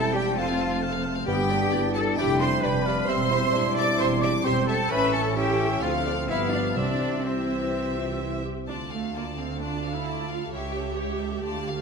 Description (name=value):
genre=quick classical-period movement for symphony orchestra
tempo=131 BPM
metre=4/4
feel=rubato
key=C major, D minor from 8.7 s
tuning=A4 = 440 Hz
part: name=clear chamber violin section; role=melody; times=0.0-11.8 s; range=C#5 to A5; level=-37 LUFS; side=left 2 dB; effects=none
part: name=mellow clarinet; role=second line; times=0.0-8.5 s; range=A3 to G4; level=-34 LUFS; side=equal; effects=none
part: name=mellow oboe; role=second line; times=0.0-8.4 s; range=E5 to A5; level=-36 LUFS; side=equal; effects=none
part: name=rich studio violin section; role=second line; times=0.0-11.8 s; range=F4 to D6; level=-34 LUFS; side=left 4 dB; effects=none
part: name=silver concert flute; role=second line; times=0.0-8.2 s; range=C5 to D6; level=-33 LUFS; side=left 3 dB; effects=none
part: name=mellow bassoon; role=accompaniment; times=0.0-8.4 s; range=B3 to E4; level=-33 LUFS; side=equal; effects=none
part: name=warm chamber viola section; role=accompaniment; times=0.0-11.8 s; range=A3 to C5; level=-34 LUFS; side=right 2 dB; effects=none
part: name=dark French horn section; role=sustained chords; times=0.0-8.4 s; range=E3 to D4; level=-32 LUFS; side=left 2 dB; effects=none
part: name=clear chamber double bass section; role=bass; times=0.0-11.8 s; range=E1 to D2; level=-31 LUFS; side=right 5 dB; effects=none
part: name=rich chamber cello section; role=bass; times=0.0-11.8 s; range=C#2 to D5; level=-29 LUFS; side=equal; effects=none
part: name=timpani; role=percussion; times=1.3-1.9, 6.8-7.5 s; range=G2 to C3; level=-34 LUFS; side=left 1 dB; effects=none
room=moderate scoring stage reverb, RT60 1.9 s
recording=minimal, uncompressed stereo recording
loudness=-23 LUFS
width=side -5 dB against mid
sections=0.0-8.7 A section; 8.7-11.8 B section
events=none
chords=0.4 F; 1.3 G; 2.2 G7/F; 3.1 C/E; 4.9 A7; 5.8 Dm7; 6.3 G7; 6.8 C; 8.7 Dm; 10.5 A7/C#